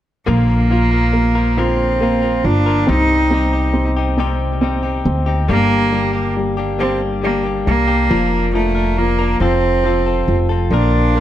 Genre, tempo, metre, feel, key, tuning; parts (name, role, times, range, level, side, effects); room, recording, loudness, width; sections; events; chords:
pop; 46 BPM (dotted quarters); 6/8; straight; Bb major; A4 = 441 Hz
rich cello; melody; 0.3-11.2 s; A3 to Eb4; -18 LUFS; right 2 dB
dark upright piano; accompaniment; 0.3-11.2 s; F3 to F4; -20 LUFS; equal
direct-recorded clean electric guitar; arpeggios; 0.3-11.2 s; G2 to Bb4; -23 LUFS; left 6 dB; ping-pong delay
upright bass; bass; 0.3-11.2 s; F1 to D2; -18 LUFS; equal
small flute group; sustained chords; 10.7-11.2 s; Bb4 to C6; -20 LUFS; equal
light reverb, small room ambience; -14 LUFS; side -12 dB against mid
0.3-11.2 A section
0.3 Bb; 2.9 Cm; 5.5 Gm; 8.1 Bb/F; 9.4 F